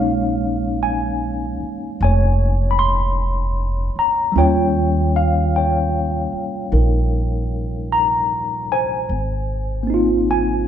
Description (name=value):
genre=jazz ballad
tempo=51 BPM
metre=4/4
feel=swing 66% on 8ths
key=unclear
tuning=A4 = 441 Hz
part: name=tine electric piano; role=accompaniment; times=0.0-10.7 s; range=G3 to C6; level=-19 LUFS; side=equal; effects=medium stereo tremolo
part: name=upright bass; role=bass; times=0.0-10.7 s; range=F1 to Eb2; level=-20 LUFS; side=equal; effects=none
room=wet stone room reverb, RT60 1.2 s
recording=band playing live in one room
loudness=-17 LUFS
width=side -9 dB against mid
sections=0.0-10.7 A section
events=none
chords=0.0 Bbm11; 4.3 Eb7; 9.1 Ab6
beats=0.82 2.00 3.17 | 4.35 5.53 6.71 7.90 | 9.09 10.27